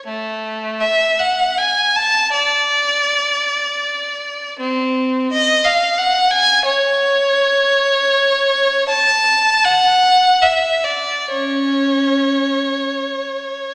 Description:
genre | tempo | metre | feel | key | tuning
classical, free, expressive piece for unaccompanied violin | 47-92 BPM | 3/4 | rubato | unclear | A4 = 439 Hz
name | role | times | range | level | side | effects
clear violin | solo | 0.0-13.7 s | A3 to A5 | -16 LUFS | equal | none
room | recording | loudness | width
wet scoring stage reverb, RT60 2.0 s | none | -16 LUFS | mono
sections
0.0-13.7 A section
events
none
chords
none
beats
| 0.07 0.80 1.57 | 2.33 3.05 3.79 | 4.59 5.32 5.98 | 6.65 7.36 8.07 | 8.89 9.64 10.42 | 11.32 12.33 13.35

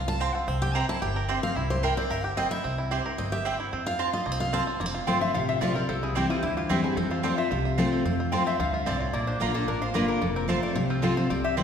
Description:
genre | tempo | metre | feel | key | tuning
bluegrass | 222 BPM | 4/4 | straight | F major | A4 = 440 Hz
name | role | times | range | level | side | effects
picked steel-string acoustic guitar | accompaniment | 0.0-11.6 s | F2 to Bb5 | -28 LUFS | left 2 dB | none
bluegrass banjo | arpeggios | 0.0-11.6 s | Bb3 to Bb4 | -32 LUFS | right 3 dB | none
upright bass | bass | 0.0-11.6 s | F1 to F2 | -32 LUFS | equal | none
mandolin | stabs | 0.2-11.6 s | Bb3 to Bb5 | -32 LUFS | right 4 dB | none
lap resonator guitar | second line | 5.1-11.6 s | E4 to G5 | -32 LUFS | left 5 dB | none
room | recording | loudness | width
wet scoring stage reverb, RT60 1.8 s | recorded in a church or concert hall | -24 LUFS | side -7 dB against mid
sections
0.0-4.8 A section; 4.8-11.6 A section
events
steel-string acoustic guitar solo 0.0-4.8; resonator guitar played with a steel bar solo 4.8-11.6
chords
0.5 C; 3.7 F; 5.9 C; 7.0 F; 9.1 Bb; 10.2 F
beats
0.21 | 0.48 0.75 1.02 1.29 | 1.56 1.83 2.10 2.37 | 2.64 2.91 3.18 3.45 | 3.72 3.99 4.26 4.53 | 4.80 5.08 5.35 5.62 | 5.89 6.16 6.43 6.70 | 6.97 7.24 7.51 7.78 | 8.05 8.32 8.60 8.87 | 9.14 9.41 9.68 9.95 | 10.22 10.49 10.76 11.03 | 11.30 11.57

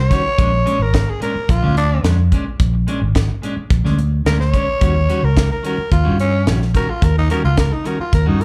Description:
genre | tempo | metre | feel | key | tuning
straight-eighth soul blues | 108 BPM | 4/4 | straight | unclear | A4 = 440 Hz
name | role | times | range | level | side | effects
growling tenor saxophone | melody | 0.0-8.4 s | Db4 to Db5 | -23 LUFS | equal | plate reverb
fingered electric bass | bass | 0.0-8.4 s | Ab1 to G2 | -18 LUFS | equal | none
clean electric guitar | stabs | 0.1-8.4 s | Bb2 to F#4 | -27 LUFS | equal | plate reverb
tight funk drum kit | drums | 0.1-8.4 s | hi-hat, kick drum, snare drum | -20 LUFS | equal | none
room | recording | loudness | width
light reverb | live gig heard through the venue's PA, club reverb | -17 LUFS | mono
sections
0.0-8.4 A section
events
none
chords
0.4 Bb7#9; 4.8 Eb7#9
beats
| 0.39 0.94 1.49 2.05 | 2.60 3.15 3.71 4.26 | 4.81 5.37 5.92 6.47 | 7.02 7.58 8.13

